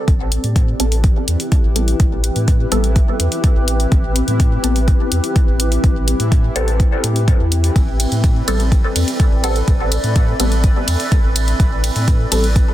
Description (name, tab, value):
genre	dub techno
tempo	125 BPM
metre	4/4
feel	straight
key	A minor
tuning	A4 = 440 Hz
part	granular cloud pad	sustained chords	0.0-12.7 s	C4 to D5	-24 LUFS	left 1 dB	built-in reverb, sidechain pumping
part	pure sine sub bass	bass	0.1-12.6 s	A1 to A2	-18 LUFS	equal	sidechain pumping
part	deep house drum kit	drums	0.1-12.7 s	hi-hat, ride cymbal	-23 LUFS	equal	none
part	electronic kick drum	drums	0.1-12.7 s	none	-14 LUFS	equal	none
part	bubbling stepped-filter texture	texture	0.9-12.7 s	E3 to B4	-28 LUFS	equal	chorus, built-in reverb, sidechain pumping
part	filtered dub chord stab	stabs	0.8-12.5 s	G3 to A4	-24 LUFS	left 1 dB	phaser, sidechain pumping, dub echo
room	digital ambience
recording	dense, heavily limited modern master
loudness	-13 LUFS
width	side -14 dB against mid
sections	0.1-12.7 A section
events	none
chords	0.1 Am9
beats	| 0.08 0.56 1.04 1.52 | 2.00 2.48 2.96 3.44 | 3.92 4.40 4.88 5.36 | 5.84 6.32 6.80 7.28 | 7.76 8.24 8.72 9.20 | 9.68 10.16 10.64 11.12 | 11.60 12.08 12.56